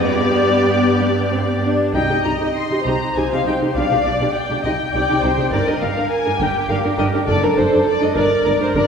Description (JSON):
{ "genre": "quick classical-period movement for string orchestra", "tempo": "68 BPM (dotted quarters)", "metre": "6/8", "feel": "rubato", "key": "C minor", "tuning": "A4 = 440 Hz", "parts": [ { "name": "rich symphonic violin section", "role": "melody", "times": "0.0-8.9 s", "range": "Bb4 to C6", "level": "-21 LUFS", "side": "left 3 dB", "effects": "none" }, { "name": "warm symphonic violin section", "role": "second line", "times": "0.0-8.9 s", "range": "G4 to Eb5", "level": "-22 LUFS", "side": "equal", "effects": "none" }, { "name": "warm symphonic viola section", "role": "accompaniment", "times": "0.0-8.8 s", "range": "B3 to Bb4", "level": "-20 LUFS", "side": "right 1 dB", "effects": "none" }, { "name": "clear studio double bass section", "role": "bass", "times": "0.0-8.8 s", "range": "F#1 to G2", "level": "-24 LUFS", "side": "right 2 dB", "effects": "none" }, { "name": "warm symphonic cello section", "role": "bass", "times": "0.0-8.8 s", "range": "F#2 to D4", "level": "-25 LUFS", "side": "right 1 dB", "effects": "none" } ], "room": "wet scoring stage reverb, RT60 2.1 s", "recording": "heard from further back in the room", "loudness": "-15 LUFS", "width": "side -6 dB against mid", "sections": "0.0-1.9 A section; 1.9-8.9 B section", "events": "none", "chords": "0.0 G; 1.9 Cm; 3.8 G/B; 4.6 Cm; 5.5 Gm; 7.3 D/F#; 8.2 Gm" }